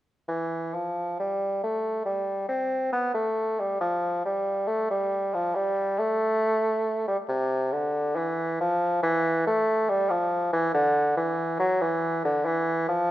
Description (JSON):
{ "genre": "classical, baroque-style fantasia for unaccompanied bassoon", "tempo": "69 BPM", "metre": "4/4", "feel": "rubato", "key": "unclear", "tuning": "A4 = 440 Hz", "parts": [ { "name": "mellow bassoon", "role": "solo", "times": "0.3-13.1 s", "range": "C3 to C4", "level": "-24 LUFS", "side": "equal", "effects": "none" } ], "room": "moderate recital hall reverb, RT60 1.7 s", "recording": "dark, warm production", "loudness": "-24 LUFS", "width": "side -14 dB against mid", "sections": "0.3-13.1 A section", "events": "none", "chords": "none" }